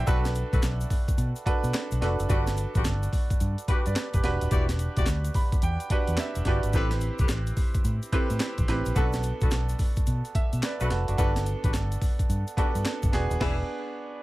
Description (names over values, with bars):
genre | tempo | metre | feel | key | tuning
R&B, new jack swing | 108 BPM | 4/4 | swing 64% on 16ths | unclear | A4 = 439 Hz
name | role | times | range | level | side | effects
bright concert grand piano | accompaniment | 0.0-14.2 s | B3 to B5 | -32 LUFS | right 3 dB | none
vintage muted fingered electric bass | bass | 0.0-13.6 s | D#1 to B2 | -28 LUFS | equal | none
warm horn section | stabs | 0.1-13.6 s | C4 to D5 | -35 LUFS | left 4 dB | tape echo
breakbeat sampler-style drum kit | drums | 0.1-13.6 s | crash cymbal, handclaps, hi-hat, kick drum, snare drum | -26 LUFS | equal | none
egg shaker | percussion | 0.1-13.4 s | none | -46 LUFS | left 7 dB | none
room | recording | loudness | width
small room ambience | none | -24 LUFS | side -18 dB against mid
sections
0.0-14.2 A section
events
grand piano fill 5.1-6.7; break 13.4-14.2; band accent 13.4-14.2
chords
0.1 Bm7; 2.3 Gmaj7; 4.2 Em9; 6.7 Am9; 9.0 Bm7; 11.2 Gmaj7; 13.1 E7